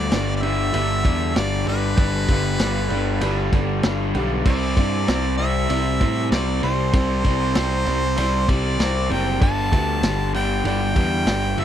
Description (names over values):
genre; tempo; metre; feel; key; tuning
classic rock; 97 BPM; 4/4; straight; G major; A4 = 439 Hz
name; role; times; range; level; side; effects
clear harmonica; melody; 0.0-11.6 s; B4 to A5; -26 LUFS; equal; none
bright upright piano; accompaniment; 0.0-11.6 s; E4 to E5; -33 LUFS; right 5 dB; none
crunchy overdriven guitar; riff; 0.0-11.6 s; G2 to C4; -24 LUFS; left 1 dB; none
fuzz picked electric bass; bass; 0.0-11.6 s; F#1 to A2; -24 LUFS; equal; overdrive
vintage drum kit; drums; 0.1-11.6 s; crash cymbal, kick drum, ride cymbal, snare drum; -24 LUFS; equal; none
room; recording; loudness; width
little or no reverb; dry, close 1970s-style studio recording; -18 LUFS; side -10 dB against mid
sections
0.0-11.6 A section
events
none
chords
0.0 G; 4.5 Cadd9; 9.4 G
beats
0.12 0.74 1.36 | 1.98 2.60 3.22 3.84 | 4.46 5.08 5.70 6.32 | 6.94 7.56 8.18 8.80 | 9.42 10.04 10.66 11.28